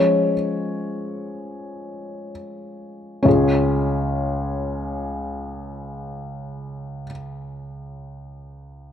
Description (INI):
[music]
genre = pop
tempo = free time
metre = none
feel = none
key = Db major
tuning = A4 = 440 Hz
[part]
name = felt-muted upright piano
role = accompaniment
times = 0.0-8.9 s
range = Db2 to Db5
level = -22 LUFS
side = left 1 dB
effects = none
[sound]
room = moderate spring reverb, RT60 2.0 s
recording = none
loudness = -21 LUFS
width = side -9 dB against mid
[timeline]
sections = 0.0-3.3 A section; 3.3-7.0 B section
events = slowing down 0.0-3.3; felt piano solo 0.0-3.3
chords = 0.0 Db/F; 3.3 Db